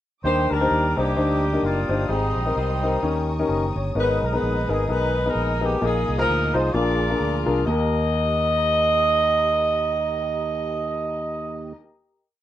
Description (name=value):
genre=uptempo gospel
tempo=129 BPM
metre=4/4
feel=swing 57% on 8ths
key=Eb major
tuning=A4 = 440 Hz
part: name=warm horn section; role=melody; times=0.2-11.7 s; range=G3 to Eb5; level=-23 LUFS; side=right 1 dB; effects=none
part: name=warm upright piano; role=accompaniment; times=0.2-11.8 s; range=Eb2 to Bb5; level=-25 LUFS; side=left 3 dB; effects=none
part: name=dark studio string section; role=sustained chords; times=0.2-11.7 s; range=G4 to Eb6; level=-37 LUFS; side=left 3 dB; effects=none
part: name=mellow tonewheel organ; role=sustained chords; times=0.2-11.7 s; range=Eb3 to Db5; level=-34 LUFS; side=right 3 dB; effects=fast rotary speaker
part: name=fingered electric bass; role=bass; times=0.2-11.7 s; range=Gb1 to Eb2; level=-26 LUFS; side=right 1 dB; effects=none
room=light reverb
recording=rough home demo mix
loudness=-20 LUFS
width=side -12 dB against mid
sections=0.2-7.7 breakdown; 7.7-11.4 final chord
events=none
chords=0.2 Ebmaj7; 2.1 Abmaj7; 3.0 Eb7; 4.0 Abmadd9; 5.8 Bb7sus4; 6.7 Bb7; 7.7 Eb